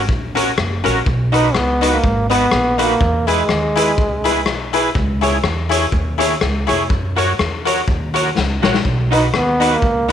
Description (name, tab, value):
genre	ska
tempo	123 BPM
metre	4/4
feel	swing 56% on 8ths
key	B major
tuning	A4 = 438 Hz
part	upright bass	bass	0.0-10.1 s	E#1 to F#2	-21 LUFS	right 1 dB	none
part	raw garage drum kit	drums	0.1-9.9 s	hi-hat, kick drum, rim click, snare drum	-20 LUFS	left 2 dB	none
part	electric guitar at the edge of break-up	accompaniment	0.4-10.1 s	D#4 to C#5	-22 LUFS	right 11 dB	none
part	tack piano	stabs	0.4-10.1 s	C#4 to C#5	-21 LUFS	left 8 dB	tape echo
part	clear trombone	melody	1.3-4.7, 9.1-10.1 s	G#3 to D#4	-17 LUFS	right 1 dB	none
room	moderate echo chamber reverb, RT60 1.6 s, studio ambience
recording	1960s-style stereo with parts hard left and right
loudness	-14 LUFS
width	side -9 dB against mid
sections	0.0-8.8 A section; 8.8-10.1 A section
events	drum fill 8.4-8.8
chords	0.0 F#; 1.1 B; 3.0 E; 5.0 C#m; 6.9 F#; 8.8 B